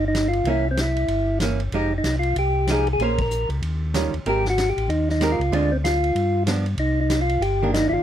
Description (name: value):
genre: soul jazz organ trio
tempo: 190 BPM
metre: 4/4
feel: swing 61% on 8ths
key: C minor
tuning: A4 = 439 Hz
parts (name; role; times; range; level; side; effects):
- percussive tonewheel organ; melody; 0.0-8.0 s; C4 to Bb4; -22 LUFS; equal; slow rotary speaker
- mellow tonewheel organ; bass; 0.0-8.0 s; F1 to G2; -24 LUFS; equal; overdrive, chorus vibrato, slow rotary speaker
- vintage drum kit; drums; 0.1-7.8 s; hi-hat, kick drum, ride cymbal, snare drum; -30 LUFS; equal; none
- archtop guitar, miked and amplified; accompaniment; 0.5-8.0 s; D3 to C5; -25 LUFS; right 4 dB; none
room: light reverb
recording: close, detailed microphones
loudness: -19 LUFS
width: side -10 dB against mid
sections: 0.0-8.0 A section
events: band accent 3.2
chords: 0.5 C7b9; 1.7 Fm9; 3.0 Bbm9; 3.6 Eb9; 4.3 Abmaj9; 5.5 Dm7b5; 6.2 G7; 6.8 Cm9